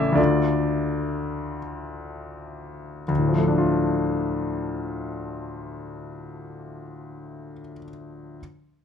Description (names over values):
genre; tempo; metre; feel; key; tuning
classical, romantic character piece for solo piano; 38-45 BPM (dotted quarters); 6/8; rubato; D minor; A4 = 442 Hz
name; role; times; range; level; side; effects
bright grand piano; solo; 0.0-8.4 s; A1 to E5; -24 LUFS; left 2 dB; none
room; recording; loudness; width
light reverb; dark, warm production; -22 LUFS; side -7 dB against mid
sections
0.0-3.1 A section; 3.1-6.2 B section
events
slowing down 0.0-3.1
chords
0.2 Dm